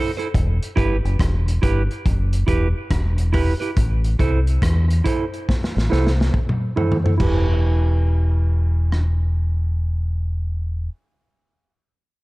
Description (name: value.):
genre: dub reggae.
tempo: 70 BPM.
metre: 4/4.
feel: swing 63% on 16ths.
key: E minor.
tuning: A4 = 437 Hz.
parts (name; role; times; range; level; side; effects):
clean electric guitar; accompaniment; 0.0-10.9 s; E4 to C5; -25 LUFS; right 4 dB; low-pass filter, dub echo.
crunchy breakbeat drum kit; drums; 0.2-9.2 s; crash cymbal, hi-hat, kick drum, rim click, snare drum, toms; -22 LUFS; equal; none.
deep dub fingered electric bass; bass; 0.4-10.9 s; E1 to E2; -18 LUFS; equal; none.
room: small room ambience.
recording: dark, warm production.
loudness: -17 LUFS.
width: side -21 dB against mid.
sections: 0.3-7.2 A section; 7.2-10.6 B section.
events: filter sweep on clean electric guitar 0.3-7.2; drum fill 5.5-7.2.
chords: 0.3 Em; 3.8 Am; 7.2 Em.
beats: | 0.34 1.20 2.05 2.91 | 3.77 4.63 5.49 6.34 | 7.20 8.06 8.92 9.78.